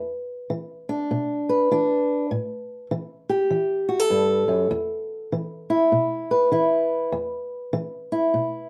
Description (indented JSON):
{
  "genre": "blues",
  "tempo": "100 BPM",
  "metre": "4/4",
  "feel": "swing 63% on 8ths",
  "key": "unclear",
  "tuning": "A4 = 439 Hz",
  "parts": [
    { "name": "fingerpicked old ladder-braced acoustic guitar", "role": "solo", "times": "0.0-8.7 s", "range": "E2 to B4", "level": "-24 LUFS", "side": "equal", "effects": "none" }
  ],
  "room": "wet small room reverb, RT60 0.5 s",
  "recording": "dark, warm production",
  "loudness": "-24 LUFS",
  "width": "mono",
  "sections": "0.0-8.7 A section",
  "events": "none",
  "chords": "0.0 E5; 2.3 A5; 4.7 E5"
}